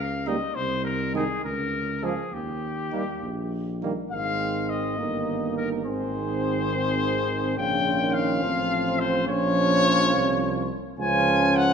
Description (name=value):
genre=classical, brass quintet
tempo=69 BPM (dotted quarters)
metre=6/8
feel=straight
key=Ab major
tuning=A4 = 440 Hz
part: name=warm trumpet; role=melody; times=0.0-11.7 s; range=G4 to Ab5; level=-26 LUFS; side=left 3 dB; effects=none
part: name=warm tuba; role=bass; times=0.0-11.7 s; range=G1 to Eb2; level=-29 LUFS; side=right 2 dB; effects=none
part: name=dark trumpet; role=second line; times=0.3-11.7 s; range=Bb3 to Ab4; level=-34 LUFS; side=right 7 dB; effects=none
part: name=warm French horn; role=accompaniment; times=0.3-11.7 s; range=G3 to Db4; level=-30 LUFS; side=left 2 dB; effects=none
part: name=warm euphonium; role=accompaniment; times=0.3-11.7 s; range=Db3 to G3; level=-30 LUFS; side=right 5 dB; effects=none
room=wet recital hall reverb, RT60 1.7 s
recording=recorded in a church or concert hall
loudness=-23 LUFS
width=side -7 dB against mid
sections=0.0-4.1 A section; 4.1-11.7 B section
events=none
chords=0.0 Eb7/Db; 0.6 Ab/C; 1.4 Bbm7/Db; 2.3 Eb; 4.1 Ab; 5.0 Eb/G; 5.8 Ab; 7.6 Bbm; 8.4 F/A; 9.3 Bbm; 11.0 Db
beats=| 0.56 1.44 | 2.33 3.22 | 4.11 4.98 | 5.85 6.71 | 7.57 8.42 | 9.28 10.13 | 10.99